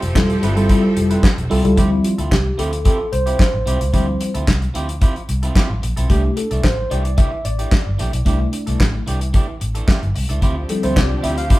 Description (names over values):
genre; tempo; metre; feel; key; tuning
early-eighties boogie funk; 111 BPM; 4/4; straight; unclear; A4 = 438 Hz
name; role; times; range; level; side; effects
clear studio string section; sustained chords; 0.0-1.8, 10.4-11.6 s; D3 to E5; -28 LUFS; equal; none
electric guitar at the edge of break-up; riff; 0.0-11.6 s; E3 to B4; -28 LUFS; right 3 dB; none
vintage muted fingered electric bass; bass; 0.0-11.5 s; E1 to D2; -21 LUFS; equal; none
damped 70s drum kit; drums; 0.0-11.6 s; handclaps, hi-hat, kick drum, snare drum; -17 LUFS; equal; none
mellow tine electric piano; accompaniment; 0.1-11.6 s; F3 to F5; -20 LUFS; left 1 dB; medium stereo tremolo
room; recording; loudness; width
moderate large studio reverb, RT60 0.8 s; band playing live in one room; -15 LUFS; side -18 dB against mid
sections
0.0-1.8 A section; 1.8-11.6 B section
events
tine electric piano solo 1.8-11.6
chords
0.0 Fmaj9; 1.8 Dm11; 6.1 C69; 10.4 Dm11